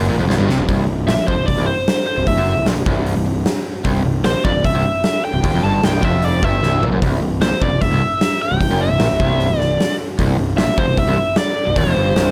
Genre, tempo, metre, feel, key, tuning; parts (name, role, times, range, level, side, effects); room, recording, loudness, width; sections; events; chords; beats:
hard rock; 152 BPM; 4/4; straight; C mixolydian; A4 = 440 Hz
overdriven semi-hollow guitar; riff; 0.0-12.3 s; C2 to C3; -25 LUFS; equal; spring reverb
overdriven semi-hollow guitar; riff; 0.0-12.3 s; C2 to C3; -26 LUFS; equal
fuzz picked electric bass; bass; 0.0-12.3 s; C1 to C2; -23 LUFS; equal; overdrive
huge arena drum kit; drums; 0.3-12.3 s; hi-hat, kick drum, snare drum, toms; -22 LUFS; equal
biting lead guitar; melody; 1.1-12.3 s; C5 to A5; -22 LUFS; equal; overdrive, slapback echo
light reverb; -17 LUFS; mono
0.7-12.3 A section
drum fill 0.3-0.7, 6.6-7.0
0.0 C5
0.29 | 0.69 1.08 1.48 1.87 | 2.27 2.66 3.06 3.46 | 3.85 4.25 4.64 5.04 | 5.44 5.83 6.23 6.63 | 7.02 7.42 7.82 8.21 | 8.61 9.00 9.40 9.79 | 10.19 10.58 10.98 11.37 | 11.77 12.16